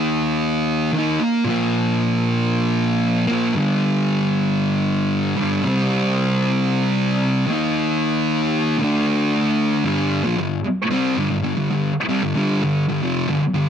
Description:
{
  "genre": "rock",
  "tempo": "114 BPM",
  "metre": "4/4",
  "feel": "straight",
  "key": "G minor",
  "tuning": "A4 = 440 Hz",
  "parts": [
    { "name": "thick fuzz guitar", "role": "solo", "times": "0.0-13.7 s", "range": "F2 to Eb4", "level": "-17 LUFS", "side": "equal", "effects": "distortion" }
  ],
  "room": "digital ambience",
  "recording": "none",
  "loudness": "-17 LUFS",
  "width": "side -8 dB against mid",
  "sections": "0.0-9.9 A section; 9.9-13.7 B section",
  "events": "none",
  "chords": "0.0 Eb5; 1.5 Bb5; 3.6 G5; 5.7 C5; 7.5 Eb5; 8.8 D5; 9.9 G5"
}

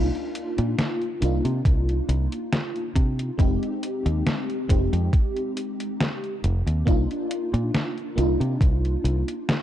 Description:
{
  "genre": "vaporwave",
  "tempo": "69 BPM",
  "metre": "4/4",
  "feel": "swing 53% on 16ths",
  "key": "unclear",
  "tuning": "A4 = 439 Hz",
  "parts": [
    { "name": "FM electric piano with soft pad layer", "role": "accompaniment", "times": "0.0-9.6 s", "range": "Ab3 to G4", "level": "-28 LUFS", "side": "equal", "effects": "tremolo, ensemble chorus, tape echo" },
    { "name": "fingered electric bass", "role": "bass", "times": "0.0-9.2 s", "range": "F1 to C3", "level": "-23 LUFS", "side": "equal", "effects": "none" },
    { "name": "detuned 8-bit digital drum machine", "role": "drums", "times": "0.1-9.6 s", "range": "hi-hat, snare drum", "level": "-28 LUFS", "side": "equal", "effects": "overdrive, vintage 12-bit sampler grit" },
    { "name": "electronic kick drum", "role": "drums", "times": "1.7-8.8 s", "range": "none", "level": "-21 LUFS", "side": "equal", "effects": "overdrive, vintage 12-bit sampler grit" }
  ],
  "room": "digital ambience",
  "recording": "dark, warm production",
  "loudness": "-22 LUFS",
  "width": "side -12 dB against mid",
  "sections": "0.0-9.6 A section",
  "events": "none",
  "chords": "0.0 Cm11; 3.4 Fm9; 6.9 Cm11"
}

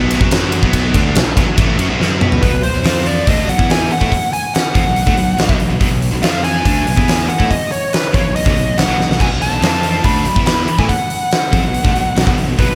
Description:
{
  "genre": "hard rock",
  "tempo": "142 BPM",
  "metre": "4/4",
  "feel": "straight",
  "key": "unclear",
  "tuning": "A4 = 440 Hz",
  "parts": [
    { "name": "crunchy overdriven guitar", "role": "riff", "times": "0.0-12.8 s", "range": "A2 to B4", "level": "-26 LUFS", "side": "equal", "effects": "none" },
    { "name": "high-gain distorted guitar", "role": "riff", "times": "0.0-12.8 s", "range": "A2 to B4", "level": "-26 LUFS", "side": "equal", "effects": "distortion" },
    { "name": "scooped high-gain guitar", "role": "riff", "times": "0.0-12.8 s", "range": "A2 to B4", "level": "-28 LUFS", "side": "equal", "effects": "none" },
    { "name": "fuzz fingered electric bass", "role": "bass", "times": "0.0-12.8 s", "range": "A1 to B2", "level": "-23 LUFS", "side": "equal", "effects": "overdrive" },
    { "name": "huge arena drum kit", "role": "drums", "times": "0.1-12.7 s", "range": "crash cymbal, hi-hat, kick drum, ride cymbal, snare drum, toms", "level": "-18 LUFS", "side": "equal", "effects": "none" },
    { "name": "smooth overdriven lead guitar", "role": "melody", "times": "2.4-12.8 s", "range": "B4 to B5", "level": "-21 LUFS", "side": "equal", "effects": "slapback echo" }
  ],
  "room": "moderate lush hall reverb, RT60 1.9 s, small room ambience",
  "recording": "big arena sound",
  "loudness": "-15 LUFS",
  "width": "mono",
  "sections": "0.0-2.4 A section; 2.4-12.8 B section",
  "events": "drum fill 2.0-2.4, 9.0",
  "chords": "0.2 F#5; 0.6 B5; 2.8 F5; 3.3 B5; 6.2 F5; 6.7 B; 9.6 F5; 10.0 B5"
}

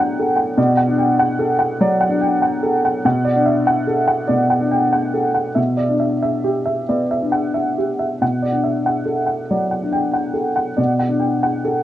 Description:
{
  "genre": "neoclassical minimalist piano",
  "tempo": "90-99 BPM",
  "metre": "4/4",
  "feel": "rubato",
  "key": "B minor",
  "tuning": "A4 = 443 Hz",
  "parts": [
    { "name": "warm upright piano", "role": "solo", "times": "0.0-11.8 s", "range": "B2 to G5", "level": "-16 LUFS", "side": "equal", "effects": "none" }
  ],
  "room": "light reverb",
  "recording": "worn, warbling old tape, cassette tape, warbly pitch drift",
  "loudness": "-16 LUFS",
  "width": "side -13 dB against mid",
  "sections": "0.0-11.8 A section",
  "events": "none",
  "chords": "0.0 Bm7; 5.6 Em7/B; 8.2 Bm7"
}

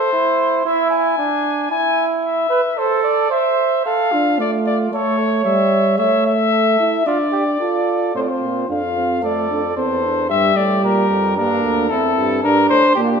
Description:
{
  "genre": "classical, imitative canzona for brass ensemble",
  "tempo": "112 BPM",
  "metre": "4/4",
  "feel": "straight",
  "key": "D minor",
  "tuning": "A4 = 441 Hz",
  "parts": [
    { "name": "warm cornet", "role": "melody", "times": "0.0-13.2 s", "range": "F4 to G#5", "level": "-18 LUFS", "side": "left 5 dB", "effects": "none" },
    { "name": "mellow flugelhorn", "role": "second line", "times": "0.0-13.2 s", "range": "D4 to C#5", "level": "-20 LUFS", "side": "right 6 dB", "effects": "none" },
    { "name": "mellow euphonium", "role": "accompaniment", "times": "4.1-13.2 s", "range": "G3 to F4", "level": "-20 LUFS", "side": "right 3 dB", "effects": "none" },
    { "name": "clear bass trombone", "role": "bass", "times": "8.1-13.2 s", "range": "D2 to Bb2", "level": "-24 LUFS", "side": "right 2 dB", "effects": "none" }
  ],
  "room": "wet stone room reverb, RT60 1.3 s",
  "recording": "minimal, uncompressed stereo recording",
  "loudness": "-15 LUFS",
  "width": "side -6 dB against mid",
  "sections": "0.0-8.1 A section; 8.1-13.2 B section",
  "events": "none",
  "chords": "0.0 Am (rootless); 0.7 E; 2.8 Am; 3.8 Dm; 4.9 A; 7.1 Dm; 8.1 F5; 9.2 Dm/F; 10.3 Gm; 11.4 Edim; 12.4 Gm"
}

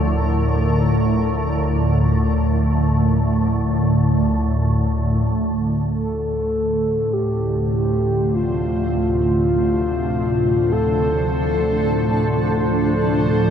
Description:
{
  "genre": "dark ambient drone",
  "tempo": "free time",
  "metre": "none",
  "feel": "none",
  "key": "D minor",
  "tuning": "A4 = 440 Hz",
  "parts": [
    { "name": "granular cloud pad", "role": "sustained chords", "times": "0.0-13.5 s", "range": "C3 to Bb4", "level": "-25 LUFS", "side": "right 1 dB", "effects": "built-in reverb" },
    { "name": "organ-like drone", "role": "drone", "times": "0.0-13.5 s", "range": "D2 to A2", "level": "-18 LUFS", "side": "equal", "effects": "ensemble chorus, built-in reverb" },
    { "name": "mellow horn-like synth lead", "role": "melody", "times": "5.9-11.9 s", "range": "F4 to A4", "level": "-22 LUFS", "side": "left 1 dB", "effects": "chorus, ping-pong delay" },
    { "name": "bubbling stepped-filter texture", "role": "texture", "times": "6.4-13.5 s", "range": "C5", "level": "-35 LUFS", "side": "right 1 dB", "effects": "chorus, built-in reverb" }
  ],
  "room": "moderate huge ambient reverb, RT60 8.6 s",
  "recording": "dark, warm production",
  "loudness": "-17 LUFS",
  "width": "side -8 dB against mid",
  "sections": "0.0-5.9 A section; 5.9-13.5 B section",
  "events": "fade-out on ambient pad 0.0-5.9; fade-in on synth texture 5.9-13.5",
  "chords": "0.0 Bb; 5.9 Dm7"
}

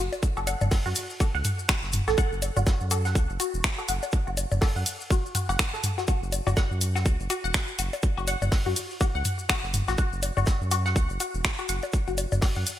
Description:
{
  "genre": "minimal techno",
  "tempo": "123 BPM",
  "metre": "4/4",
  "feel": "swing 58% on 16ths",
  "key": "F# minor",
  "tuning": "A4 = 440 Hz",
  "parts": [
    { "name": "resonant blip pluck", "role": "riff", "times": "0.0-12.6 s", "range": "F#4 to F#5", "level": "-32 LUFS", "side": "left 1 dB", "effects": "phaser, lush chorus, sidechain pumping, ping-pong delay" },
    { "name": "round analog bass", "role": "bass", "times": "0.0-12.6 s", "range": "E1 to F#2", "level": "-29 LUFS", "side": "equal", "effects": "sidechain pumping" },
    { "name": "warm soul drum kit", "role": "drums", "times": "0.1-12.8 s", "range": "hi-hat, shaker, snare drum", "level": "-38 LUFS", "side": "right 1 dB", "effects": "high-pass filter on hats, high-pass filter on snare, high-pass filter on perc, high-pass filter on room" },
    { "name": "electronic bongos, cowbell, toms and woodblock", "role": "percussion", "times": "0.1-12.5 s", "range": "none", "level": "-31 LUFS", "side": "left 1 dB", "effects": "ping-pong delay" },
    { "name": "maracas", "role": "percussion", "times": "0.1-12.8 s", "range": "none", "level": "-38 LUFS", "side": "left 5 dB", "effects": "none" },
    { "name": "electronic kick drum", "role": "drums", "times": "0.2-12.5 s", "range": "none", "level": "-25 LUFS", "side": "equal", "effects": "none" },
    { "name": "garage drum kit", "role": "drums", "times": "0.5-12.8 s", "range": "finger snaps, hi-hat", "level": "-28 LUFS", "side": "right 1 dB", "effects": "none" }
  ],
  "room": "light reverb, small room ambience",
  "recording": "bright 1980s-style digital production",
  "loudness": "-24 LUFS",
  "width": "side -12 dB against mid",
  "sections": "0.0-12.8 A section",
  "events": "none",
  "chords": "0.0 F#5"
}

